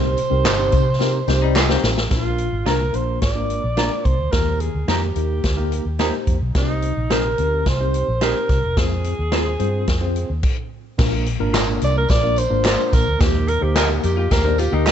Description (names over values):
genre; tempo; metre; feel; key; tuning
uptempo 1960s-style soul; 108 BPM; 4/4; straight; Bb mixolydian; A4 = 440 Hz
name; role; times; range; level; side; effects
warm alto saxophone; melody; 0.0-14.9 s; Eb4 to D5; -23 LUFS; right 2 dB; none
bright tine electric piano; accompaniment; 0.0-14.9 s; Bb2 to C5; -25 LUFS; left 3 dB; medium stereo tremolo
vintage muted fingered electric bass; bass; 0.0-14.9 s; E1 to C3; -22 LUFS; equal; none
swinging big-band drum kit; drums; 0.2-14.9 s; crash cymbal, hi-hat, kick drum, snare drum; -21 LUFS; equal; none
tambourine and handclaps; percussion; 0.2-2.0, 11.0-14.9 s; none; -28 LUFS; left 1 dB; none
electric guitar through a small old amp; stabs; 0.4-14.9 s; D4 to Eb5; -25 LUFS; right 4 dB; tremolo
archtop guitar, miked and amplified; riff; 1.4-2.1, 14.2-14.9 s; G3 to Bb4; -26 LUFS; left 8 dB; none
room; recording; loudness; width
light reverb; nothing above 8.0 kHz; -17 LUFS; side -9 dB against mid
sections
0.0-2.1 A section; 2.1-11.0 B section; 11.0-14.9 C section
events
drum fill 1.0-2.1; stop 10.4-11.0; alto saxophone solo 11.0-14.9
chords
0.0 Cm; 2.1 Bb; 4.3 Eb; 6.6 Cm; 8.8 Fm; 11.0 Bb; 13.2 Eb